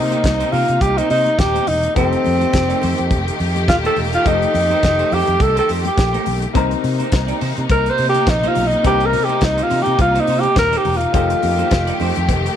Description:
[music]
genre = disco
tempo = 105 BPM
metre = 4/4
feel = swing 56% on 16ths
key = C dorian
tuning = A4 = 440 Hz
[part]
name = breathy alto saxophone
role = melody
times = 0.0-12.4 s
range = C4 to C5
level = -17 LUFS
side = equal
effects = none
[part]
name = clear grand piano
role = accompaniment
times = 0.0-12.6 s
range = C3 to Bb4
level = -28 LUFS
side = left 13 dB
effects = none
[part]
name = clear symphonic string section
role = sustained chords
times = 0.0-12.6 s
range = C3 to G4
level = -24 LUFS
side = left 1 dB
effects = none
[part]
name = fingered electric bass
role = bass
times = 0.0-12.5 s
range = Eb1 to C3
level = -21 LUFS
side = equal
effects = none
[part]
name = semi-hollow electric guitar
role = accompaniment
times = 0.1-12.5 s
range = A3 to D5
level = -28 LUFS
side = right 12 dB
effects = wide subtle chorus
[part]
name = damped 70s drum kit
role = drums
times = 0.1-12.6 s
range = hi-hat, kick drum, snare drum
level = -21 LUFS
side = equal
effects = none
[part]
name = congas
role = percussion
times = 0.1-12.4 s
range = none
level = -32 LUFS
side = left 11 dB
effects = none
[part]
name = cowbell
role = percussion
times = 6.6-12.4 s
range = none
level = -33 LUFS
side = left 14 dB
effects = none
[sound]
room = light reverb, small room ambience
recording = 1960s-style stereo with parts hard left and right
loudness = -14 LUFS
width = side -9 dB against mid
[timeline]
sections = 0.0-12.6 A section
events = alto saxophone solo 0.0-12.6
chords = 0.0 Cm7; 2.0 F9; 6.5 Cm7; 11.1 F9

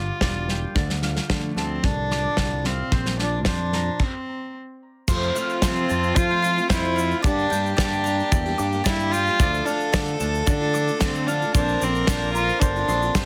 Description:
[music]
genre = indie folk with a building arrangement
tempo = 112 BPM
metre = 4/4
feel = straight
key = F major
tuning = A4 = 440 Hz
[part]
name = dark cello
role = melody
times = 0.0-13.3 s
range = A3 to F4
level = -28 LUFS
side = equal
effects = none
[part]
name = fingerpicked steel-string acoustic guitar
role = accompaniment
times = 0.0-4.0 s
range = G2 to C5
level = -36 LUFS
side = equal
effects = none
[part]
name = mandolin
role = arpeggios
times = 0.0-13.3 s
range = C5 to D6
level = -34 LUFS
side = equal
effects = tape echo
[part]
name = picked electric bass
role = bass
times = 0.0-13.3 s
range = E1 to F3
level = -29 LUFS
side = equal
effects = none
[part]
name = loose indie drum kit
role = drums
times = 0.2-13.3 s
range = crash cymbal, kick drum, snare drum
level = -26 LUFS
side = equal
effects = soft clipping on kick
[part]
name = dark fiddle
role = second line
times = 5.1-13.3 s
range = F4 to Bb4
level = -32 LUFS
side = equal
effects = none
[part]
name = picked steel-string acoustic guitar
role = accompaniment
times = 5.1-13.3 s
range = F2 to G4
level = -34 LUFS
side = equal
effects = none
[part]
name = pedal harmonium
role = sustained chords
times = 5.1-13.3 s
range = D3 to A4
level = -39 LUFS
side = equal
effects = none
[part]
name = egg shaker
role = percussion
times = 5.1-13.3 s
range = none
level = -40 LUFS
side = equal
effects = none
[sound]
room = little or no reverb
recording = dense, heavily limited modern master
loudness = -22 LUFS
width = mono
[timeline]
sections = 0.0-5.1 A section; 5.1-13.3 B section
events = stop 4.0-5.1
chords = 0.0 Gm; 0.8 Dm; 2.9 Bbadd9; 4.0 N.C.; 5.1 F; 7.2 Gm; 9.4 Dm; 11.5 Bbadd9

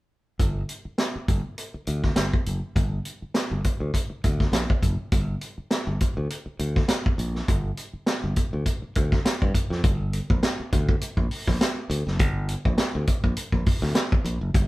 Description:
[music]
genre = funk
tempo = 102 BPM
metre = 4/4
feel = swing 56% on 16ths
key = G minor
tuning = A4 = 440 Hz
[part]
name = modern bright fingered electric bass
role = bass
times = 0.4-14.7 s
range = F#1 to G2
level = -28 LUFS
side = equal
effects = none
[part]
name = vintage drum kit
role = drums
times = 0.4-14.7 s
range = hi-hat, kick drum, snare drum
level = -23 LUFS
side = equal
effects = none
[sound]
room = moderate studio reverb, RT60 0.6 s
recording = band playing live in one room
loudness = -22 LUFS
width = side -19 dB against mid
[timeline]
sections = 0.4-9.8 A section; 9.8-14.7 B section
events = none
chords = none

